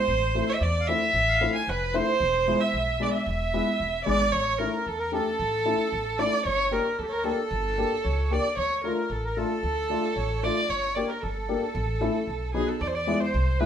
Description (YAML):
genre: klezmer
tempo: 113 BPM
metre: 2/4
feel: straight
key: E phrygian dominant, A phrygian dominant from 4.3 s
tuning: A4 = 440 Hz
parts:
  - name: dark violin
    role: melody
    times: 0.0-13.7 s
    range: G#4 to G#5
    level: -27 LUFS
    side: right 2 dB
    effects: none
  - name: accordion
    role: second line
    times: 0.0-13.7 s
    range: G4 to G#5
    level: -32 LUFS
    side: right 1 dB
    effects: light tremolo tuning
  - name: upright bass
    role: bass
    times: 0.1-13.7 s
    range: E1 to E2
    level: -30 LUFS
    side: equal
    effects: none
  - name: dark upright piano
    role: accompaniment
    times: 0.3-13.7 s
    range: F#3 to G4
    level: -29 LUFS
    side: left 4 dB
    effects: none
room: wet studio reverb, RT60 0.8 s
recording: band playing live in one room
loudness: -23 LUFS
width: side -8 dB against mid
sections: 0.0-4.3 A section; 4.3-12.8 B section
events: none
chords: 0.1 Am; 2.2 E; 4.3 A; 6.5 Gm; 8.6 Dm; 10.7 Gm; 11.8 A; 12.3 B7; 12.8 E